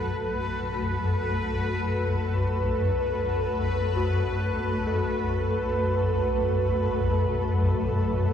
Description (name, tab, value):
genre	dark ambient drone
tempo	free time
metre	none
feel	none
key	unclear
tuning	A4 = 440 Hz
part	granular cloud pad	sustained chords	0.0-8.3 s	A3 to B4	-30 LUFS	left 2 dB	built-in reverb
part	dark detuned synth bell	arpeggios	0.0-8.3 s	F#4 to A4	-36 LUFS	left 2 dB	chorus, ping-pong delay
part	swarming drone	drone	0.0-8.3 s	B1 to F#2	-26 LUFS	left 1 dB	built-in reverb
part	bubbling stepped-filter texture	texture	0.0-8.3 s	B4	-29 LUFS	right 2 dB	chorus, built-in reverb
room	wet cathedral reverb, RT60 6.7 s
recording	worn, warbling old tape, cassette tape, warbly pitch drift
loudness	-24 LUFS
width	side -9 dB against mid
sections	0.0-8.3 A section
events	none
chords	0.0 Bm7